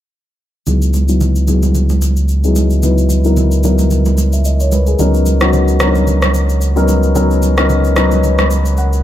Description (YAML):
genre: amapiano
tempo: 111 BPM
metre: 4/4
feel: swing 55% on 16ths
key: C# dorian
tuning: A4 = 440 Hz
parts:
  - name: dark baby grand piano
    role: accompaniment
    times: 0.7-9.0 s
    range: F#3 to F#5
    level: -15 LUFS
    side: left 2 dB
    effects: low-pass filter
  - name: sub bass with octave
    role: bass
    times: 0.7-9.0 s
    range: C#2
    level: -13 LUFS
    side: equal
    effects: none
  - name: electronic shaker and rim click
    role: drums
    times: 0.7-9.0 s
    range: none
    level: -20 LUFS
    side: equal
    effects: none
  - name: congas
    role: percussion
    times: 0.7-8.6 s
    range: none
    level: -22 LUFS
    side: right 5 dB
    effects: none
room: light reverb, small room ambience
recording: dark, warm production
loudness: -10 LUFS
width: side -12 dB against mid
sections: 0.7-9.0 A section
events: filter sweep on grand piano 0.7-9.0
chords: 0.7 C#m11; 5.0 Bmaj9/C#